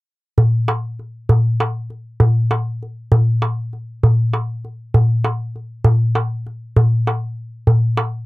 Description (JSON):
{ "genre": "arabic", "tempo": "free time", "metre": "none", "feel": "none", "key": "none", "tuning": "none", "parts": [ { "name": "darbuka", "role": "percussion", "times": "0.4-8.1 s", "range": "none", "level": "-15 LUFS", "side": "equal", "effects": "none" } ], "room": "light reverb", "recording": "dry, close 1970s-style studio recording", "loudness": "-16 LUFS", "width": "side -21 dB against mid", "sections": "0.4-7.7 A section", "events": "none", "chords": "none", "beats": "free time" }